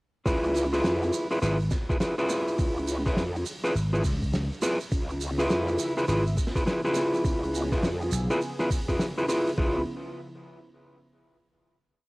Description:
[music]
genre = glitch hop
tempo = 103 BPM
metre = 4/4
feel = swing 62% on 16ths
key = unclear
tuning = A4 = 440 Hz
[part]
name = mellow electric guitar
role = stabs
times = 0.3-9.8 s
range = E4 to B4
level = -27 LUFS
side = equal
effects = sidechain pumping, cassette tape, analog delay
[part]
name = growl bass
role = bass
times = 0.3-9.8 s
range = C#2 to E#2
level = -31 LUFS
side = equal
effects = chorus, overdrive
[part]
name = boom bap sampler-style drum kit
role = drums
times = 0.3-9.7 s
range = kick drum, toms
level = -28 LUFS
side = equal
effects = cassette tape
[part]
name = oversized low-tuned drum kit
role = drums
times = 0.3-9.6 s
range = hi-hat, snare drum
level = -35 LUFS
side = equal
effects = cassette tape
[part]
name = shekere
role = percussion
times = 0.3-9.6 s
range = none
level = -41 LUFS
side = right 6 dB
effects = none
[part]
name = vintage slap bass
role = bass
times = 1.4-8.3 s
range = G#1 to C#2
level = -26 LUFS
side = equal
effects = tube saturation
[part]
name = warm analog pad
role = sustained chords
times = 4.9-9.8 s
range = C#3 to E5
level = -38 LUFS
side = equal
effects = chorus, sidechain pumping, cassette tape
[sound]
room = light reverb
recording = home recording on cassette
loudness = -24 LUFS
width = side -24 dB against mid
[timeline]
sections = 0.3-9.6 drop; 9.6-11.9 final chord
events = drop 0.3-9.6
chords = 0.3 C#7#9

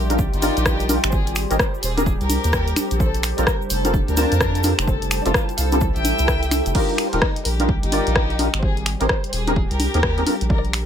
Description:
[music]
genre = UK garage, two-step garage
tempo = 128 BPM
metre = 4/4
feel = swing 62% on 16ths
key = Eb major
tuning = A4 = 441 Hz
[part]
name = dark chamber violin section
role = melody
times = 0.0-10.7 s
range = D4 to G5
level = -28 LUFS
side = left 2 dB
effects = none
[part]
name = warm analog pad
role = sustained chords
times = 0.0-10.9 s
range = G3 to G4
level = -33 LUFS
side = left 1 dB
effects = chorus, vintage 12-bit sampler grit, sidechain pumping
[part]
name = soft dub sub bass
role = bass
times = 0.0-10.8 s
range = Eb1 to F2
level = -22 LUFS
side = equal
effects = none
[part]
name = granular cloud pad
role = texture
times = 0.0-6.8 s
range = D4 to Bb5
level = -29 LUFS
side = right 1 dB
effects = built-in reverb, sidechain pumping
[part]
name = percussive organ stab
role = stabs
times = 0.1-10.3 s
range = C4 to A5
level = -25 LUFS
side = left 1 dB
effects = ensemble chorus
[part]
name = punchy analog drum machine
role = drums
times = 0.1-10.9 s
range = congas, crash cymbal, finger snaps, hi-hat, rim click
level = -23 LUFS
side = left 1 dB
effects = none
[part]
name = cabasa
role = percussion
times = 0.1-6.7 s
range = none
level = -33 LUFS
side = right 7 dB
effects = none
[part]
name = electronic kick drum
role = drums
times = 0.2-10.6 s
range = none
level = -22 LUFS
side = equal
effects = none
[sound]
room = little or no reverb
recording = none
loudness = -17 LUFS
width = side -9 dB against mid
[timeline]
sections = 0.0-6.8 A section; 6.8-10.9 A section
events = drop 0.0-6.8, 6.8-10.9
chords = 0.0 Ebmaj9; 1.1 Abmaj9; 2.8 Bbmaj9; 4.9 Fmaj9; 6.8 Ebmaj9; 8.6 Abmaj9; 10.3 Bbmaj9

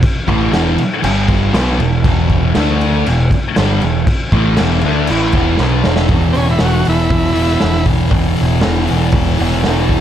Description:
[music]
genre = garage rock duo or trio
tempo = 118 BPM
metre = 4/4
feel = straight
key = unclear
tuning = A4 = 441 Hz
[part]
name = raw garage drum kit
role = drums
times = 0.0-10.0 s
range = crash cymbal, hi-hat, kick drum, snare drum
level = -16 LUFS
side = equal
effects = none
[part]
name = thick fuzz guitar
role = riff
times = 0.3-10.0 s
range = E2 to D4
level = -15 LUFS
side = equal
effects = distortion
[part]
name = growling picked electric bass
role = bass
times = 0.3-10.0 s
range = E1 to D2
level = -16 LUFS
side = equal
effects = overdrive, tube saturation
[part]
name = overdriven combo organ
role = melody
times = 6.3-7.9 s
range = C4 to F#4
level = -18 LUFS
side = right 1 dB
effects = none
[sound]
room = light reverb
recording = none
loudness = -11 LUFS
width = side -10 dB against mid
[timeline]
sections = 0.0-6.1 A section; 6.1-10.0 B section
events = drum fill 5.6-6.1; transistor combo organ solo 6.1-10.0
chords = 0.0 E5; 1.0 G5; 1.5 E5; 2.6 D5; 3.1 E5

